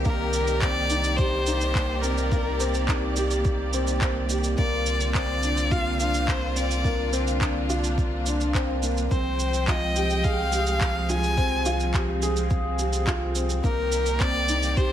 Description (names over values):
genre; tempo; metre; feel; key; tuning
piano and strings electronica; 106 BPM; 4/4; straight; C minor; A4 = 440 Hz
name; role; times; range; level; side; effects
clear symphonic string section; sustained chords; 0.0-14.9 s; D3 to G5; -31 LUFS; right 1 dB; sidechain pumping
felt-muted upright piano; riff; 0.0-14.9 s; Bb3 to C5; -28 LUFS; left 1 dB; tape echo
warm sub bass; bass; 0.0-14.9 s; C2; -28 LUFS; equal; sidechain pumping
rich violin; melody; 0.1-14.9 s; Bb4 to Ab5; -28 LUFS; left 1 dB; tape echo
electronic kick drum; drums; 0.1-14.9 s; none; -25 LUFS; equal; none
electronic shaker and handclaps; drums; 0.1-14.9 s; none; -32 LUFS; right 2 dB; none
room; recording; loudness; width
light reverb, small room ambience; none; -22 LUFS; side -10 dB against mid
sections
0.0-14.9 A section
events
none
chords
0.0 Cm7; 4.6 Bbadd9/C; 9.1 Fmadd9/C; 13.6 Cm7